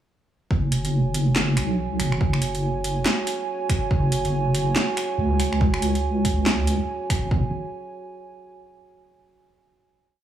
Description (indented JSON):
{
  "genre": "deep dubstep",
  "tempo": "141 BPM",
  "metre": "4/4",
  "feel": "swing 60% on 16ths, half-time",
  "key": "unclear",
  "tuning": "A4 = 440 Hz",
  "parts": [
    { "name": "dark analog pad", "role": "sustained chords", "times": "0.5-7.5 s", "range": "F#4 to G#5", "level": "-28 LUFS", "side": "right 3 dB", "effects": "chorus" },
    { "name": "deep soft wobble bass", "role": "bass", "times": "0.5-7.5 s", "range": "F#1 to C#2", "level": "-22 LUFS", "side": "equal", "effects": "chorus" },
    { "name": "electronic kick drum", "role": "drums", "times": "0.5-7.4 s", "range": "none", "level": "-23 LUFS", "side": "equal", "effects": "overdrive, studio reverb" },
    { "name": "deep house drum kit", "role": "drums", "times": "0.7-7.2 s", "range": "finger snaps, handclaps, hi-hat, snare drum", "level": "-26 LUFS", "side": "equal", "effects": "overdrive, studio reverb" }
  ],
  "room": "light reverb",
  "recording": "studio ambience",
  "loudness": "-20 LUFS",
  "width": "side -10 dB against mid",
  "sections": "0.5-7.3 drop; 7.3-9.0 final chord",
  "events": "drop 0.5-7.3",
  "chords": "0.5 F#sus2",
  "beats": "| 0.50 0.93 1.35 1.78 | 2.21 2.63 3.06 3.48 | 3.91 4.33 4.76 5.18 | 5.61 6.04 6.46 6.89 | 7.31"
}